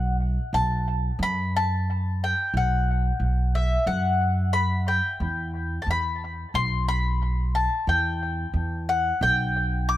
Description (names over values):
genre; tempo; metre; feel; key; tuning
indie folk with a building arrangement; 90 BPM; 4/4; straight; E minor; A4 = 440 Hz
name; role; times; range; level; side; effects
mandolin; melody; 0.0-10.0 s; E5 to D6; -25 LUFS; left 2 dB; analog delay
upright bass; bass; 0.0-10.0 s; B1 to F#2; -25 LUFS; equal; none
room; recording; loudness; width
light reverb; echo-heavy mix; -22 LUFS; side -14 dB against mid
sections
0.0-10.0 A section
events
none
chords
0.0 B5; 5.2 Em